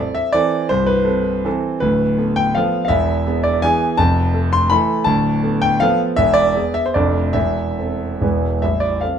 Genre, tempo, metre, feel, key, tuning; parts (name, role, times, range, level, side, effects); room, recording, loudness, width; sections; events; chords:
classical, romantic triple-time dance for piano with dotted rhythms; 128-179 BPM; 3/4; rubato; A minor; A4 = 440 Hz
warm concert grand piano; solo; 0.0-9.2 s; A0 to C6; -15 LUFS; equal
light reverb; -15 LUFS; side -8 dB against mid
0.0-8.6 A section
0.0 Am; 0.7 Am/C; 1.8 Bm7b5/D; 2.9 E; 4.0 Fmaj7; 5.1 Bm7b5/D; 6.2 E; 7.0 Dm/F; 7.3 Am/E; 8.2 E; 8.6 Am